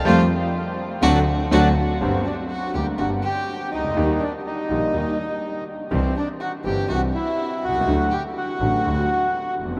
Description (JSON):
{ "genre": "tango", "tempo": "123 BPM", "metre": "4/4", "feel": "rubato", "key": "G harmonic minor", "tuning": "A4 = 440 Hz", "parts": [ { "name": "bandoneon", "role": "melody", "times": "0.0-9.5 s", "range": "C4 to A5", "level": "-28 LUFS", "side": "equal", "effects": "none" }, { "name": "warm violin", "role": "second line", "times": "0.0-9.5 s", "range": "C4 to G4", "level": "-31 LUFS", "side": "equal", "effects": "none" }, { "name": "clear double bass", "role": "bass", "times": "0.0-9.8 s", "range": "F1 to F2", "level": "-27 LUFS", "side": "equal", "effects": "none" }, { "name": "bright concert grand piano", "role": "accompaniment", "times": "0.1-9.8 s", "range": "G1 to G4", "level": "-26 LUFS", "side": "equal", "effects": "none" }, { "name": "rich studio string section", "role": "stabs", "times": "0.1-1.7 s", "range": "A3 to F#4", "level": "-31 LUFS", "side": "equal", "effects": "none" } ], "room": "wet huge ambient reverb, RT60 8.3 s", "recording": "in a vast, echoing space", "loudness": "-22 LUFS", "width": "mono", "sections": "0.0-2.0 A section; 2.0-9.8 B section", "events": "band accent 0.1-2.0", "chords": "0.1 Fadd9; 1.0 D7; 2.0 Gm; 4.0 Eb; 5.9 C; 7.9 D" }